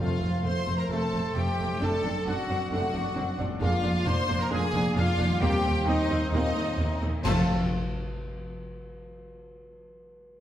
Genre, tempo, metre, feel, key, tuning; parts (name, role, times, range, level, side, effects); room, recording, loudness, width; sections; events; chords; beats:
cinematic, heroic adventure film score; 132 BPM; 4/4; straight; F mixolydian; A4 = 444 Hz
rich studio violin section; melody; 0.0-7.5 s; Eb5 to C6; -36 LUFS; left 3 dB
bright silver concert flute; second line; 0.0-7.5 s; Eb5 to C6; -37 LUFS; left 2 dB
clear clarinet; second line; 0.0-7.4 s; A3 to C4; -38 LUFS; equal
dark cor anglais; second line; 0.0-7.4 s; C5 to D5; -40 LUFS; right 1 dB
rich studio violin section; second line; 0.0-7.5 s; A3 to C5; -35 LUFS; equal
rich symphonic viola section; accompaniment; 0.0-7.5 s; A3 to F4; -37 LUFS; right 1 dB
mellow French horn section; sustained chords; 0.0-7.4 s; C4 to A4; -38 LUFS; left 1 dB
warm trombone section; sustained chords; 0.0-7.4 s; Bb2 to Bb3; -39 LUFS; right 1 dB
concert harp; arpeggios; 0.0-7.5 s; F2 to C5; -39 LUFS; left 3 dB
clear trumpet section; stabs; 0.0-7.4 s; Eb4 to C5; -34 LUFS; equal
rich symphonic cello section; bass; 0.0-7.5 s; Eb2 to F#2; -31 LUFS; right 1 dB
rich symphonic double bass section; bass; 0.0-7.5 s; F1 to Eb2; -31 LUFS; right 1 dB
timpani; percussion; 0.0-0.6, 7.2-7.5 s; F2; -36 LUFS; left 1 dB
cymbal swell, clash cymbals and concert bass drum; percussion; 3.6-8.1 s; -37 LUFS; equal
wet recital hall reverb, RT60 1.6 s; heard from further back in the room; -24 LUFS; side -11 dB against mid
0.0-7.2 A section; 7.2-9.1 B section
band accent 7.2-7.7
0.0 F; 1.8 D7/F#; 3.6 Bb7/F; 5.4 Eb6; 7.2 F
0.45 0.90 1.35 | 1.81 2.26 2.71 3.17 | 3.62 4.07 4.52 4.97 | 5.42 5.87 6.33 6.78 | 7.25 7.70